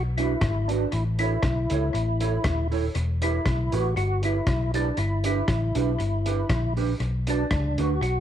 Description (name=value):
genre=ska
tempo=118 BPM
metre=4/4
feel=swing 54% on 8ths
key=B minor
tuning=A4 = 441 Hz
part: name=percussive tonewheel organ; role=melody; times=0.0-8.2 s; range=D4 to F#4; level=-29 LUFS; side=left 2 dB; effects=chorus vibrato, slow rotary speaker
part: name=vintage muted fingered electric bass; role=bass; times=0.0-8.2 s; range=D#1 to D2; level=-26 LUFS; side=left 1 dB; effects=none
part: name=mellow electric guitar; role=accompaniment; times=0.2-7.9 s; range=D4 to C#5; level=-30 LUFS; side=right 13 dB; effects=tape echo
part: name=vintage drum kit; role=drums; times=0.2-8.1 s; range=hi-hat, kick drum, rim click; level=-30 LUFS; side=left 1 dB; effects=tape echo
room=small room reverb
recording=1960s-style stereo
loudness=-22 LUFS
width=side -10 dB against mid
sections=0.0-8.2 A section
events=none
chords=0.0 Bm; 0.9 A; 2.9 Em; 5.0 G; 7.0 Bm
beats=0.42 | 0.92 1.43 1.94 2.44 | 2.95 3.45 3.96 4.47 | 4.97 5.48 5.99 6.49 | 7.00 7.51 8.01